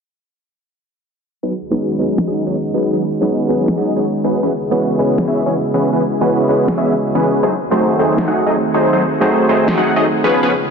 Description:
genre	future bass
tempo	160 BPM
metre	4/4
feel	half-time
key	B major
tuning	A4 = 440 Hz
part	airy breathy pad	sustained chords	1.4-10.7 s	C#3 to G#4	-24 LUFS	left 2 dB	chorus
part	supersaw stab	riff	1.4-10.5 s	E3 to F#5	-16 LUFS	equal	cassette tape, low-pass filter, ping-pong delay
part	bell-like tine electric piano	accompaniment	1.7-10.3 s	G#3 to G#4	-19 LUFS	right 2 dB	ping-pong delay
part	electronic snare drum	drums	2.2-9.8 s	none	-23 LUFS	left 1 dB	none
part	riser	sound effects	10.7 s	none	-39 LUFS	right 4 dB	none
room	light reverb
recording	dense, heavily limited modern master, low-pass filter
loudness	-13 LUFS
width	side -6 dB against mid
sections	1.4-10.7 A section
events	filter sweep on supersaw synth 1.4-10.7; filter sweep 1.4-10.7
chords	1.4 B6; 4.4 E6; 7.4 G#7b9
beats	| 1.43 1.80 2.18 2.56 | 2.93 3.31 3.68 4.05 | 4.43 4.80 5.18 5.55 | 5.93 6.30 6.68 7.05 | 7.43 7.80 8.18 8.55 | 8.93 9.30 9.68 10.05 | 10.43

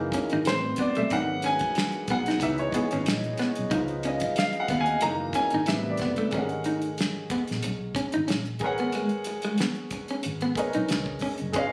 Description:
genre	R&B, neo-soul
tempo	92 BPM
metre	4/4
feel	swing 53% on 16ths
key	G# minor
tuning	A4 = 439 Hz
part	warm upright piano	accompaniment	0.0-11.7 s	C3 to A#5	-31 LUFS	equal	none
part	glass harmonica	sustained chords	0.0-6.3 s	G#3 to E#5	-37 LUFS	equal	none
part	vintage muted fingered electric bass	bass	0.0-11.7 s	F#1 to D#2	-36 LUFS	equal	none
part	electric guitar through a small old amp	second line	0.1-11.7 s	G#3 to D#4	-31 LUFS	equal	none
part	damped 70s drum kit	drums	0.1-11.7 s	hi-hat, kick drum, snare drum	-34 LUFS	equal	none
room	light reverb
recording	recorded on a phone in the room, studio reverb, compression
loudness	-27 LUFS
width	mono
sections	0.0-6.3 A section; 6.3-11.7 B section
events	upright piano solo 0.0-6.3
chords	0.5 Am7; 1.1 G#m7; 2.4 C#m9; 3.7 C#9; 5.0 F#13; 5.7 Am7; 6.3 Bmaj9/G# (rootless); 8.6 G#m11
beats	0.46 | 1.11 1.76 2.41 3.06 | 3.72 4.37 5.02 5.67 | 6.33 6.98 7.63 8.28 | 8.93 9.59 10.24 10.89 | 11.54

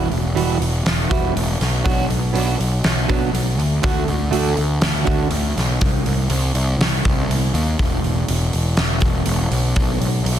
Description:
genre	quiet-loud alternative rock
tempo	121 BPM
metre	4/4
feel	straight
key	unclear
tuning	A4 = 440 Hz
part	fingerpicked plugged-in steel-string acoustic guitar	arpeggios	0.0-5.6 s	D3 to F#4	-23 LUFS	right 6 dB	none
part	fuzz picked electric bass	bass	0.0-10.4 s	E1 to Eb2	-19 LUFS	equal	overdrive
part	big rock drum kit	drums	0.1-10.4 s	hi-hat, kick drum, snare drum	-21 LUFS	equal	none
room	light reverb, studio ambience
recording	dense, heavily limited modern master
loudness	-16 LUFS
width	side -10 dB against mid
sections	0.0-10.4 A section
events	none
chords	0.0 Emadd9; 1.6 Bm; 3.6 D; 5.8 N.C.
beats	0.37 0.86 1.36 | 1.85 2.35 2.85 3.34 | 3.84 4.33 4.83 5.32 | 5.82 6.31 6.81 7.30 | 7.79 8.29 8.78 9.28 | 9.77 10.27

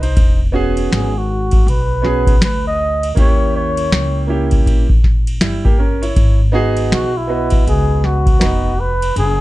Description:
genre	hip hop, jazz-hop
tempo	80 BPM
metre	4/4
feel	swing 63% on 16ths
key	unclear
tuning	A4 = 441 Hz
part	clear upright piano	accompaniment	0.0-8.7 s	G3 to D#5	-20 LUFS	right 3 dB	plate reverb
part	upright bass	bass	0.0-9.4 s	E1 to D#2	-19 LUFS	equal	none
part	booming analog drum machine	drums	0.0-9.4 s	hi-hat, kick drum, ride cymbal, snare drum	-15 LUFS	equal	vintage 12-bit sampler grit
part	trumpet with bucket mute	melody	0.9-9.4 s	E4 to D#5	-19 LUFS	equal	slapback echo, plate reverb
room	light reverb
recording	dark, warm production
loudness	-12 LUFS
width	side -17 dB against mid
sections	0.0-9.4 A section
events	kick muted 9.2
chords	0.2 E69; 3.2 D#7b9; 6.2 G#m7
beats	| 0.16 0.91 1.66 2.41 | 3.16 3.91 4.66 5.41 | 6.16 6.91 7.66 8.41 | 9.16

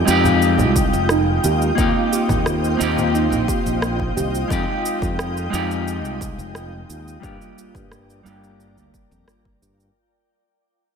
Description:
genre	sunset chillout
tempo	88 BPM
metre	4/4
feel	straight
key	unclear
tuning	A4 = 439 Hz
part	clean electric guitar	accompaniment	0.0-9.9 s	G3 to G4	-22 LUFS	left 1 dB	auto-pan, low-pass filter, digital delay
part	shimmering ambient pad	sustained chords	0.0-9.9 s	Ab3 to G5	-25 LUFS	right 1 dB	chorus, built-in reverb
part	soft round pluck	arpeggios	0.1-4.3 s	Eb4 to G4	-27 LUFS	right 7 dB	wide subtle chorus, digital delay
part	modern bright fingered electric bass	bass	0.1-9.9 s	F1 to G2	-23 LUFS	equal	tube saturation
part	electronic cabasa and rim click	drums	0.1-9.9 s	none	-28 LUFS	right 2 dB	overdrive, studio reverb
part	congas	percussion	0.2-4.3 s	none	-27 LUFS	right 2 dB	none
part	electronic kick drum	drums	0.8-9.6 s	none	-25 LUFS	equal	overdrive, studio reverb
room	light reverb, digital ambience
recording	none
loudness	-17 LUFS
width	side -6 dB against mid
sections	0.0-10.0 A section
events	fade-out 0.0-10.0; filter sweep on clean electric guitar 0.0-10.0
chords	0.0 Fm9; 1.8 Eb69; 4.5 Fm9; 7.2 Gm7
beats	0.41 1.09 | 1.78 2.46 3.14 3.82 | 4.50 5.19 5.87 6.55 | 7.23 7.91 8.60 9.28

